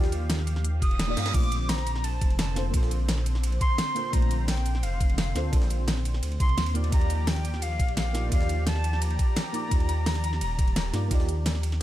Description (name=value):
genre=liquid drum and bass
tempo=172 BPM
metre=4/4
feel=straight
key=unclear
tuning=A4 = 440 Hz
part: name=deep mellow chord stab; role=accompaniment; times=0.0-11.8 s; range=A3 to F5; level=-35 LUFS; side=right 1 dB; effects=chorus, phaser, tape echo
part: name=warm analog pad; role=sustained chords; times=0.0-11.8 s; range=D3 to F5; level=-39 LUFS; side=equal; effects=chorus, sidechain pumping
part: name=dark detuned saw bass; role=bass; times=0.0-11.8 s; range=Eb1 to G2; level=-27 LUFS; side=equal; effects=none
part: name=breakbeat sampler-style drum kit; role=drums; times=0.0-11.8 s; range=hi-hat, ride cymbal, snare drum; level=-40 LUFS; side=right 2 dB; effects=high-pass filter on cymbals, high-pass filter on snare, high-pass filter on hats
part: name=pop drum kit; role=drums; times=0.1-11.8 s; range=crash cymbal, hi-hat, ride cymbal, snare drum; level=-32 LUFS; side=equal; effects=none
part: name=reverse cymbal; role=sound effects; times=0.8-1.3 s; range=none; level=-37 LUFS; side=right 9 dB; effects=none
part: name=jazz flute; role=melody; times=0.8-11.8 s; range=F5 to Eb6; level=-33 LUFS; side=left 1 dB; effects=tape echo
part: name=electronic kick drum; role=drums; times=0.8-11.2 s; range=none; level=-24 LUFS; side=equal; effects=none
room=little or no reverb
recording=none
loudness=-23 LUFS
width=side -14 dB against mid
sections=0.0-11.8 A section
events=reverse cymbal 0.8-1.3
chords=0.0 Ebmaj9; 1.3 Bbmaj9; 6.7 Ebmaj9